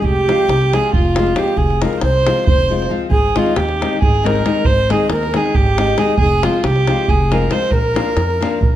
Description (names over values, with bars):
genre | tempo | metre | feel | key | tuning
balkan folk, Balkan wedding band | 273 BPM (eighths) | 7/8 | straight | unclear | A4 = 439 Hz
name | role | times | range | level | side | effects
wooden-headed alto flute | melody | 0.0-8.8 s | F4 to C5 | -19 LUFS | equal | none
rich violin | second line | 0.0-8.8 s | F4 to C5 | -21 LUFS | right 5 dB | none
upright bass | bass | 0.0-8.8 s | F1 to F2 | -19 LUFS | equal | none
davul | percussion | 0.0-8.7 s | none | -19 LUFS | right 1 dB | none
nylon-string guitar | accompaniment | 0.3-8.6 s | Eb3 to F4 | -21 LUFS | left 5 dB | none
room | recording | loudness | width
moderate recital hall reverb, RT60 1.7 s | none | -13 LUFS | side -12 dB against mid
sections
0.0-8.8 A section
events
none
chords
0.0 Fm; 3.1 Ab; 6.2 Fm; 7.7 Bb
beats
| 0.03 0.25 0.47 0.69 0.91 1.13 1.35 | 1.57 1.79 2.01 2.23 2.45 2.67 2.89 | 3.11 3.33 3.55 3.77 3.99 4.21 4.43 | 4.65 4.87 5.09 5.30 5.53 5.74 5.96 | 6.18 6.40 6.62 6.84 7.06 7.28 7.50 | 7.72 7.94 8.15 8.37 8.59